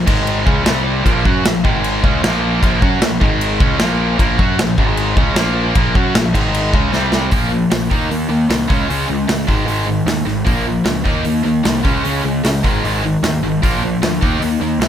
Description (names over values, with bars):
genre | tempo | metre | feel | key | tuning
hard rock | 153 BPM | 4/4 | straight | Bb minor | A4 = 439 Hz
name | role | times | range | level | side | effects
tight distorted guitar | riff | 0.0-14.9 s | Ab2 to Gb4 | -17 LUFS | equal | distortion
fuzz picked electric bass | bass | 0.0-14.9 s | Ab1 to Gb2 | -20 LUFS | equal | overdrive
big rock drum kit | drums | 0.1-14.9 s | crash cymbal, hi-hat, kick drum, snare drum | -18 LUFS | equal | none
room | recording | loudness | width
little or no reverb | none | -13 LUFS | side -10 dB against mid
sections
0.0-7.3 A section; 7.3-14.9 B section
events
drum fill 6.9-7.3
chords
0.1 Ab5; 0.5 Db5; 0.7 C5; 1.1 Bbm; 1.6 Ab5; 2.0 Bbm; 3.2 Ab5; 3.6 Bbm; 4.8 Ab5; 5.2 Bbm; 6.3 Ab5; 6.7 Db5; 6.9 C5; 7.3 Bb5; 7.9 Eb5; 8.7 Db5; 9.5 Ab5; 10.5 Bbm; 11.1 Eb5; 11.9 Db5; 12.6 Ab5; 13.6 Bb5; 14.2 Eb5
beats
0.27 0.67 | 1.06 1.45 1.84 2.23 | 2.62 3.02 3.41 3.80 | 4.19 4.58 4.97 5.37 | 5.76 6.15 6.54 6.93 | 7.33 7.72 8.11 8.51 | 8.90 9.29 9.69 10.08 | 10.48 10.87 11.26 11.66 | 12.05 12.45 12.84 13.23 | 13.63 14.02 14.42 14.81